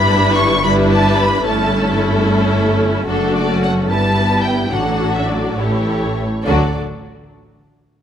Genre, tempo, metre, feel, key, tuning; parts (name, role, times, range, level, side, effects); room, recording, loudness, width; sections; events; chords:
quick classical-period movement for symphony orchestra; 67-75 BPM (dotted quarters); 6/8; straight; D major; A4 = 440 Hz
rich studio violin section; melody; 0.0-6.8 s; A4 to C#6; -20 LUFS; left 1 dB
warm studio violin section; second line; 0.0-6.8 s; E4 to B4; -20 LUFS; left 2 dB
clear studio viola section; accompaniment; 0.0-6.8 s; E3 to E4; -20 LUFS; left 1 dB
rich studio cello section; bass; 0.0-6.8 s; F#2 to D3; -21 LUFS; right 1 dB
warm studio double bass section; bass; 0.0-6.8 s; F#1 to D2; -21 LUFS; right 2 dB
timpani; percussion; 4.7-6.7 s; A2 to D3; -30 LUFS; left 1 dB
moderate recital hall reverb, RT60 1.7 s; close, detailed microphones; -13 LUFS; side -9 dB against mid
0.0-6.5 A section; 6.5-8.0 B section
0.0 Em7/G; 1.4 A7/G; 3.1 D/F#; 3.9 Em/G; 4.7 D/A; 5.6 A7; 6.5 D